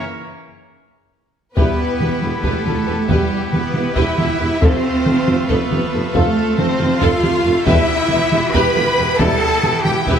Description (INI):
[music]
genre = cinematic, epic orchestral film score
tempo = 275 BPM (eighths)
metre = 7/8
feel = straight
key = E phrygian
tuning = A4 = 441 Hz
[part]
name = warm symphonic violin section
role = melody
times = 0.0-10.2 s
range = G4 to B5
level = -26 LUFS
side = left 5 dB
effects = none
[part]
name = mellow French horn section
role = sustained chords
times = 0.0-9.4 s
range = A4 to F5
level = -28 LUFS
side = left 7 dB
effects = none
[part]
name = pipe organ, trumpet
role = sustained chords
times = 0.0-10.2 s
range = A3 to G5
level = -25 LUFS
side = equal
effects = none
[part]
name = warm symphonic cello section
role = bass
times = 0.0-10.2 s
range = G3 to B4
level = -19 LUFS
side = right 2 dB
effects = none
[part]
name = warm symphonic violin section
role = second line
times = 1.6-10.2 s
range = G4 to B5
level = -26 LUFS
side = left 2 dB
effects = none
[part]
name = warm symphonic viola section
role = accompaniment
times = 1.6-10.2 s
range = E4 to B4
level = -25 LUFS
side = equal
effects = none
[part]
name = dark trombone section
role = sustained chords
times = 1.6-9.4 s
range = B2 to G3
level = -27 LUFS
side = right 2 dB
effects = none
[part]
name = mellow tuba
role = bass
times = 1.6-10.2 s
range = E1 to F1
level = -25 LUFS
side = right 2 dB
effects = none
[part]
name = rich symphonic double bass section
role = bass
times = 1.6-10.2 s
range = E2 to F2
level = -24 LUFS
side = right 3 dB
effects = none
[part]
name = taiko ensemble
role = drums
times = 1.6-10.2 s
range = none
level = -21 LUFS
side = equal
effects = none
[sound]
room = moderate scoring stage reverb, RT60 1.6 s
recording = none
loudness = -14 LUFS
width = side -8 dB against mid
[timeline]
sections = 0.0-1.6 A section; 1.6-10.2 B section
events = break 0.0-1.6; drum fill 0.9-1.6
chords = 0.0 N.C.; 1.6 Em; 4.6 F; 7.7 Em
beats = | 0.04 0.26 0.48 0.69 0.91 1.13 1.35 | 1.57 1.78 2.00 2.22 2.44 2.66 2.88 | 3.09 3.31 3.53 3.75 3.96 4.18 4.40 | 4.62 4.84 5.05 5.27 5.49 5.71 5.93 | 6.14 6.36 6.58 6.80 7.02 7.23 7.45 | 7.67 7.89 8.11 8.32 8.54 8.76 8.98 | 9.20 9.41 9.63 9.85 10.07